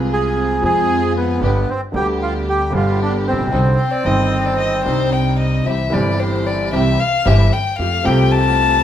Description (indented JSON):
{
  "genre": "tango",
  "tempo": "114 BPM",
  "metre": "4/4",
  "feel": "rubato",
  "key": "C harmonic minor, C major from 5.7 s",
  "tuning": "A4 = 440 Hz",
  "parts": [
    { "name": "warm concert grand piano", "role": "accompaniment", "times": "0.0-8.8 s", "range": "G1 to Ab4", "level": "-20 LUFS", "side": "equal", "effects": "none" },
    { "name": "dark studio string section", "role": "stabs", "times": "0.0-8.8 s", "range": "A3 to Ab4", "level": "-26 LUFS", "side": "right 2 dB", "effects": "none" },
    { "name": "upright bass", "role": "bass", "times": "0.0-8.8 s", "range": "G1 to F2", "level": "-20 LUFS", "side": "right 1 dB", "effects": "none" },
    { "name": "bandoneon", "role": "melody", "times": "0.1-5.1 s", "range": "B3 to Ab4", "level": "-19 LUFS", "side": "right 1 dB", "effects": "none" },
    { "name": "dark violin", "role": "second line", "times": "3.8-8.8 s", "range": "C5 to A5", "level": "-19 LUFS", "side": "left 6 dB", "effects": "none" }
  ],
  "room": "moderate large studio reverb, RT60 0.9 s",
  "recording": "minimal, uncompressed stereo recording",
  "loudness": "-14 LUFS",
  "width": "side -10 dB against mid",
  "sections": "0.0-5.7 A section; 5.7-8.8 B section",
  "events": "violin solo 5.7-8.8",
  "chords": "0.0 Fm; 1.4 G; 3.5 Cmadd9; 5.7 C; 7.8 Fadd9",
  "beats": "0.37 0.90 | 1.42 1.94 2.47 3.00 | 3.52 4.05 4.59 5.13 | 5.67 6.20 6.74 7.27 | 7.80 8.32"
}